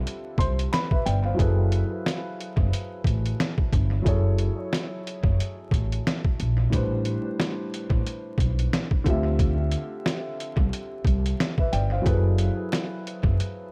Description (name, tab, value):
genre	hip hop, boom-bap hip-hop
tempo	90 BPM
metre	4/4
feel	swing 57% on 16ths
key	unclear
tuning	A4 = 440 Hz
part	dark grand piano	accompaniment	0.0-13.7 s	A2 to G5	-33 LUFS	equal	cassette tape, high-pass filter, low-pass filter, analog delay
part	upright bass	bass	0.0-13.4 s	F#1 to D2	-27 LUFS	equal	none
part	trip hop sampler-style drum kit	drums	0.1-13.6 s	hi-hat, kick drum, snare drum	-27 LUFS	equal	none
part	dark upright piano	melody	0.4-1.0 s	B4 to C6	-34 LUFS	equal	high-pass filter, low-pass filter, analog delay
part	finger snaps	percussion	0.7-0.9, 12.7-12.9 s	none	-47 LUFS	equal	none
room	small room ambience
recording	echo-heavy mix, vinyl crackle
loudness	-25 LUFS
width	mono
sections	0.0-1.4 A section; 1.4-13.7 B section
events	none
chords	0.0 Dm11; 1.4 F#m11; 6.7 Am11; 9.1 Dm11; 12.1 F#m11